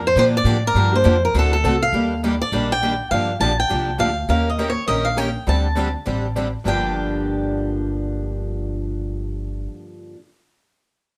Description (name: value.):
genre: acoustic string swing (jazz manouche).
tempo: 203 BPM.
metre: 4/4.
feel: swing 59% on 8ths.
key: G minor.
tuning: A4 = 440 Hz.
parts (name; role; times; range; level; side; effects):
picked swing-style acoustic guitar; melody; 0.0-9.7 s; A4 to A5; -23 LUFS; equal; none.
upright bass; bass; 0.0-9.7 s; G1 to Bb2; -25 LUFS; equal; none.
picked steel-string acoustic guitar; accompaniment; 0.2-10.2 s; G2 to Bb4; -28 LUFS; equal; none.
picked steel-string acoustic guitar; accompaniment; 0.2-10.2 s; G2 to Bb4; -31 LUFS; equal; none.
room: moderate small room reverb, RT60 0.6 s.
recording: none.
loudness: -20 LUFS.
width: mono.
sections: 0.0-1.9 A section; 1.9-6.7 B section; 6.7-9.0 C section.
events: none.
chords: 0.0 Gm7; 1.3 D7; 1.9 Ebmaj9; 3.1 Gm7; 4.3 Eb7; 5.5 D7sus4; 6.7 Gm7.